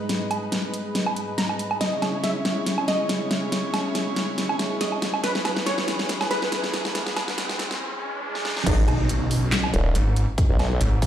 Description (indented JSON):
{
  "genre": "heavy wobble dubstep",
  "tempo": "140 BPM",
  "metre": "4/4",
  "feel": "swing 54% on 16ths, half-time",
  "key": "G# minor",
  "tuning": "A4 = 440 Hz",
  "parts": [
    { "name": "lush unison pad", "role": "sustained chords", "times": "0.0-8.6 s", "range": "E2 to C#5", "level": "-29 LUFS", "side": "equal", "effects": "chorus, sidechain pumping" },
    { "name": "dubstep drum kit", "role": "drums", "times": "0.1-11.1 s", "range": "crash cymbal, handclaps, hi-hat, snare drum, woodblock", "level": "-26 LUFS", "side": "equal", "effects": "none" },
    { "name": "wide unison pluck", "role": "melody", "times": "1.4-6.9 s", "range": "B4 to A#5", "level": "-29 LUFS", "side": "equal", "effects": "digital delay" },
    { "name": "riser, swell and impact", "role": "sound effects", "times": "4.5-10.4 s", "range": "none", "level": "-32 LUFS", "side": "right 1 dB", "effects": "none" },
    { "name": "formant-sweep wobble bass", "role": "bass", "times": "8.7-10.8 s", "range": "D#1 to B1", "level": "-22 LUFS", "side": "equal", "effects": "chorus, overdrive" },
    { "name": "electronic kick drum", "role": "drums", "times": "8.7-11.1 s", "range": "none", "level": "-21 LUFS", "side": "equal", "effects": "none" },
    { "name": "snarling distorted saw bass", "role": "bass", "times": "8.9-11.1 s", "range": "G#1 to B1", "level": "-21 LUFS", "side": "equal", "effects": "overdrive" }
  ],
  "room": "moderate lush hall reverb, RT60 1.8 s",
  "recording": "played on a big sound system in a bare room, large studio reverb, high-pass filter",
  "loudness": "-22 LUFS",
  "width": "side -10 dB against mid",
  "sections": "0.0-8.7 A section; 8.7-11.1 B section",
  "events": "build-up 0.0-8.7; drum fill 0.0-7.8, 8.3-8.7; filter sweep 0.0-8.7; riser 4.5-8.7; swell 7.8-8.7; drop 8.7-11.1; impact 8.7-10.4",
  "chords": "0.0 G#m; 1.8 C#madd9; 5.2 E; 8.7 G#5"
}